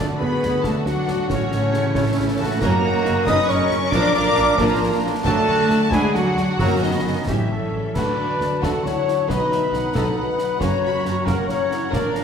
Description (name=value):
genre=cinematic, heroic adventure film score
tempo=91 BPM (dotted quarters)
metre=6/8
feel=straight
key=D major from 8.0 s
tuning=A4 = 440 Hz
part: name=warm symphonic violin section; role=melody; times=0.0-12.2 s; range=C#5 to D#6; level=-30 LUFS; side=left 3 dB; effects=none
part: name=bright concert flute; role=second line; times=0.0-12.2 s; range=C#5 to D#6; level=-30 LUFS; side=left 1 dB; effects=none
part: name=dark cor anglais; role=second line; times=0.0-12.2 s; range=C#4 to D#5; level=-30 LUFS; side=right 1 dB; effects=none
part: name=warm symphonic violin section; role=second line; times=0.0-12.1 s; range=A3 to F#4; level=-32 LUFS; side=left 2 dB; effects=none
part: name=warm studio viola section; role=accompaniment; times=0.0-12.2 s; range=C#3 to F#4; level=-32 LUFS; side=right 2 dB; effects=none
part: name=clear trombone section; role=sustained chords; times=0.0-12.2 s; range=E3 to D#4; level=-31 LUFS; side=right 3 dB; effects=none
part: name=dark French horn section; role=sustained chords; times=0.0-12.2 s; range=C#4 to D#5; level=-25 LUFS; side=left 3 dB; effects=none
part: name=concert harp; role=arpeggios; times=0.0-12.2 s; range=F#2 to A5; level=-30 LUFS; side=left 2 dB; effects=none
part: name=dark trumpet section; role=stabs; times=0.0-12.2 s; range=A3 to C#5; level=-27 LUFS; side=right 1 dB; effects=none
part: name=warm studio double bass section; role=bass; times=0.0-12.0 s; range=F#1 to D2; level=-26 LUFS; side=right 2 dB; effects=none
part: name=warm symphonic cello section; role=bass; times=0.0-12.0 s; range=D2 to D#4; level=-26 LUFS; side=right 2 dB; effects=none
part: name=concert snare drum, concert bass drum and clash cymbals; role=drums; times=0.4-12.2 s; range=none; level=-30 LUFS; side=equal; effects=none
part: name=timpani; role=percussion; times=2.6-3.2, 6.6-7.2 s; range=F#2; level=-28 LUFS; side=equal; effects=none
part: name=mellow clarinet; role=second line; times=7.9-12.2 s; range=C#4 to F#4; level=-33 LUFS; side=equal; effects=none
room=wet recital hall reverb, RT60 1.3 s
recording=heard from further back in the room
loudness=-17 LUFS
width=side -7 dB against mid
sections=0.0-8.0 A section; 8.0-12.2 B section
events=none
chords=0.0 D; 1.3 A; 2.6 F#; 3.9 A#; 5.3 D; 6.6 F#; 7.3 A7; 8.0 D; 9.3 B; 10.6 F#